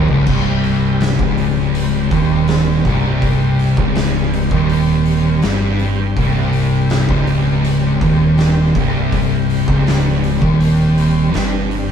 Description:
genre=stoner and doom metal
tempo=81 BPM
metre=4/4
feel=straight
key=C phrygian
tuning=A4 = 441 Hz
part: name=bright tonewheel organ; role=sustained chords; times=0.0-11.9 s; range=C3 to C4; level=-27 LUFS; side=right 1 dB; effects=chorus vibrato, slow rotary speaker
part: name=thick fuzz guitar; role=riff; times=0.0-11.9 s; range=C2 to G2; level=-17 LUFS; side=left 7 dB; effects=distortion
part: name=thick fuzz guitar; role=riff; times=0.0-11.9 s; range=C2 to G2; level=-17 LUFS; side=right 6 dB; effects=distortion
part: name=picked electric bass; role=bass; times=0.0-11.9 s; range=C1 to G1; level=-21 LUFS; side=equal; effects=overdrive
part: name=oversized low-tuned drum kit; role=drums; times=0.1-11.9 s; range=crash cymbal, hi-hat, kick drum, snare drum, toms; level=-22 LUFS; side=equal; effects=none
room=moderate studio reverb, RT60 0.8 s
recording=band playing live in one room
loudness=-13 LUFS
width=side -8 dB against mid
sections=0.3-11.9 A section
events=drum fill 0.0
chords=0.3 Cm

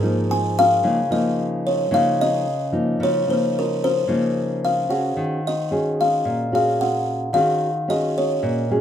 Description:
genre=bossa nova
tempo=111 BPM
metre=4/4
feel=straight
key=unclear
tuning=A4 = 439 Hz
part: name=buzzing kalimba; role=melody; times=0.0-8.7 s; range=Bb4 to Ab5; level=-20 LUFS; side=left 1 dB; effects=none
part: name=nylon-string guitar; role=accompaniment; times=0.0-8.8 s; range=Ab2 to Ab4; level=-22 LUFS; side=equal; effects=none
room=light reverb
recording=minimal, uncompressed stereo recording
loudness=-18 LUFS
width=side -9 dB against mid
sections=0.0-8.8 A section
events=none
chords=0.0 Db69 (rootless); 0.8 Gbmaj13/Db (rootless); 5.2 Ebm11

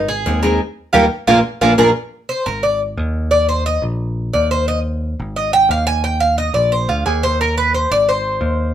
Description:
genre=latin, Cuban son and guajira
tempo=176 BPM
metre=4/4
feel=straight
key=unclear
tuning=A4 = 438 Hz
part: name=Cuban tres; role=arpeggios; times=0.0-8.7 s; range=F4 to Ab5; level=-15 LUFS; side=right 1 dB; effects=none
part: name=picked electric bass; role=bass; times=0.0-8.7 s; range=Ab1 to Eb2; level=-20 LUFS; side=equal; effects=none
part: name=nylon-string guitar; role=accompaniment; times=0.3-1.9 s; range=G3 to Ab4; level=-16 LUFS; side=left 1 dB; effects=none
part: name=cowbell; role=percussion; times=0.3-1.9 s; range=none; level=-24 LUFS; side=left 2 dB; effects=none
room=moderate studio reverb, RT60 0.6 s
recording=band playing live in one room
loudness=-14 LUFS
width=side -10 dB against mid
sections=0.0-2.0 A section; 2.0-8.7 B section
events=band accent 0.6-2.0; Cuban tres solo 2.0-8.7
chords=0.0 Ab; 0.6 Ebadd9; 1.3 Bb7; 2.0 Abadd9; 2.6 Ab5; 3.3 Eb5; 4.7 Ab5; 6.0 Eb5; 6.7 Bb; 7.4 Ab

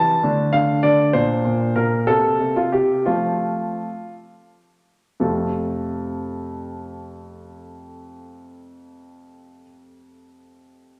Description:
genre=classical-period piano sonatina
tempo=53-67 BPM (dotted quarters)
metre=6/8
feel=straight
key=F major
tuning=A4 = 440 Hz
part: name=warm grand piano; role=solo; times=0.0-11.0 s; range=F2 to A5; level=-21 LUFS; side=equal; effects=none
room=wet recital hall reverb, RT60 1.7 s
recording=none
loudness=-20 LUFS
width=mono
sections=0.0-5.2 A section; 5.2-9.7 B section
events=slowing down 0.2-5.2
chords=0.2 D5; 1.1 Bbadd9; 2.1 Gm11/C; 3.1 F

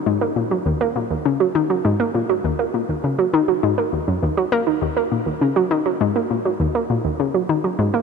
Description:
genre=ambient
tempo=101 BPM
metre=4/4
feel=straight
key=Eb minor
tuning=A4 = 439 Hz
part: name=analog pluck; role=solo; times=0.1-8.0 s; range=Eb2 to Bb3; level=-18 LUFS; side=equal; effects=chorus, ping-pong delay
room=wet huge ambient reverb, RT60 7.8 s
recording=cassette tape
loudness=-18 LUFS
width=side -5 dB against mid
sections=0.0-8.0 A section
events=none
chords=none

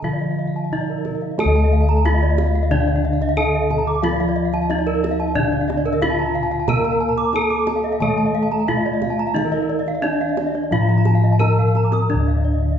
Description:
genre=Balinese gamelan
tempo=90 BPM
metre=4/4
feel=straight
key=D pelog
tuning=A4 = 440 Hz
part: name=gamelan-type bronze metallophone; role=melody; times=0.0-12.8 s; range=D4 to Bb4-20c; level=-23 LUFS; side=equal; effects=none
part: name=gamelan-type bronze metallophone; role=accompaniment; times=0.0-12.8 s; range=D3 to Bb3-20c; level=-25 LUFS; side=left 1 dB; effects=none
part: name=gamelan-type bronze metallophone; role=arpeggios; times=0.0-12.7 s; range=D5 to D6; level=-26 LUFS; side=left 4 dB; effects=none
part: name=gamelan-type bronze metallophone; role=arpeggios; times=0.0-12.8 s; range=Bb4-20c to Eb6+20c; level=-26 LUFS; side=right 4 dB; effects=none
part: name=gamelan-type bossed gongs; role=bass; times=0.0-12.8 s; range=D2 to D5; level=-21 LUFS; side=left 1 dB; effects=none
part: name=kendang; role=percussion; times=0.0-12.7 s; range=none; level=-29 LUFS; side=right 3 dB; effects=none
room=wet recital hall reverb, RT60 1.4 s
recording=recorded in a church or concert hall, nothing above 7.9 kHz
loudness=-16 LUFS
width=side -8 dB against mid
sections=0.0-1.4 A section; 1.4-12.1 B section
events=drum fill 11.6-12.1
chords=none

